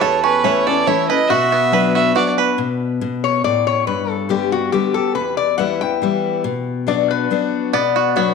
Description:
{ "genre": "bluegrass", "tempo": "140 BPM", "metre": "3/4", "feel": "straight", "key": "unclear", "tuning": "A4 = 440 Hz", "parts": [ { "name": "rich fiddle", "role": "melody", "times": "0.0-2.3 s", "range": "B4 to E5", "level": "-18 LUFS", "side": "right 2 dB", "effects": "none" }, { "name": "lap resonator guitar", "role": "second line", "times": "0.0-8.3 s", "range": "F#4 to G5", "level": "-20 LUFS", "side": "left 9 dB", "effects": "none" }, { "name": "picked steel-string acoustic guitar", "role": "accompaniment", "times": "0.0-8.3 s", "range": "E2 to G4", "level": "-20 LUFS", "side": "left 7 dB", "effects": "none" }, { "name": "bluegrass banjo", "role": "arpeggios", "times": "0.0-2.6, 7.7-8.3 s", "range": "B3 to B4", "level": "-18 LUFS", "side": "right 11 dB", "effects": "none" } ], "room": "moderate echo chamber reverb, RT60 1.5 s, studio reverb", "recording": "1960s-style stereo with parts hard left and right", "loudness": "-15 LUFS", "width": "side -5 dB against mid", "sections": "0.0-2.6 A section; 2.6-8.3 B section", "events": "resonator guitar played with a steel bar solo 2.6-8.3", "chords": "0.0 A; 1.3 Bm; 2.6 Aadd9; 3.9 G; 5.2 Em; 6.4 Bm" }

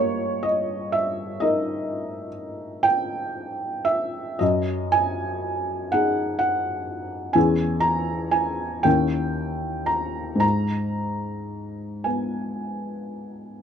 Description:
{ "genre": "classical, romantic nocturne for solo piano", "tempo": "36-42 BPM (dotted quarters)", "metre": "12/8", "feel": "rubato", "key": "G# minor", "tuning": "A4 = 440 Hz", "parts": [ { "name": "felt-muted upright piano", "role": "solo", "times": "0.0-13.6 s", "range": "D#2 to A#5", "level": "-22 LUFS", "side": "equal", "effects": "none" } ], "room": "light reverb", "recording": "dark, warm production, nothing above 10.7 kHz", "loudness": "-22 LUFS", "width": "side -8 dB against mid", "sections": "0.0-13.6 A section", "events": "none", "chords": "0.0 D#/G; 4.4 G#5/F#; 7.4 C#m/E; 8.9 D#7b9; 10.4 G#m" }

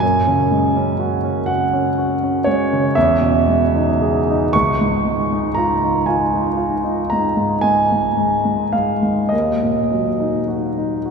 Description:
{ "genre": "classical, impressionist solo piano", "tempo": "34-42 BPM (dotted quarters)", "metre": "9/8", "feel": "rubato", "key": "unclear", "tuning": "A4 = 440 Hz", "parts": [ { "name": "clear concert grand piano", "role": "solo", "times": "0.0-11.1 s", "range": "Db2 to Db6", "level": "-15 LUFS", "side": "right 1 dB", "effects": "none" } ], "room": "wet cathedral reverb, RT60 5.5 s", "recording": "recorded in a church or concert hall", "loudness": "-15 LUFS", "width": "side -5 dB against mid", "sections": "0.0-11.1 A section", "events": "none", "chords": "0.0 Gbsus2; 3.0 Emaj7; 4.5 Dbadd9; 9.3 Ebm" }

